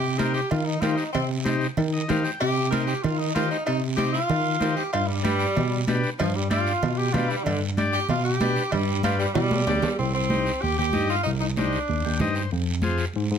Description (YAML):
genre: latin, cumbia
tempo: 190 BPM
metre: 4/4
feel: straight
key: C minor from 10.0 s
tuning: A4 = 440 Hz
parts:
  - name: clear saxophone section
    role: melody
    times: 0.0-12.3 s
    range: D3 to Bb4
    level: -26 LUFS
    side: right 1 dB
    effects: none
  - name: tine electric piano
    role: bass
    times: 0.0-13.4 s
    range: C2 to Eb3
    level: -26 LUFS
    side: equal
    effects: overdrive, fast stereo tremolo
  - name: combo organ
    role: accompaniment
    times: 0.2-13.1 s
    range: D4 to G5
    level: -29 LUFS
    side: left 4 dB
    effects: none
  - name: congas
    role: percussion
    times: 0.2-13.3 s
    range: none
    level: -29 LUFS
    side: right 3 dB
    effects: none
  - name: cowbell and timbales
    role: percussion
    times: 0.2-9.9 s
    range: none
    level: -33 LUFS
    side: right 3 dB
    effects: none
  - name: guiro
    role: percussion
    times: 0.2-13.4 s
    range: none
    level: -38 LUFS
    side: right 4 dB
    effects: none
room: light reverb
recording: close, detailed microphones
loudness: -22 LUFS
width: side -7 dB against mid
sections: 0.0-10.0 A section; 10.0-13.4 B section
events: saxophone section solo 0.0-10.0; transistor combo organ fill 1.8-2.4, 11.9-12.5; drum fill 9.4-10.0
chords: 0.0 Cm; 4.9 G; 10.0 Cmadd9; 12.5 Fm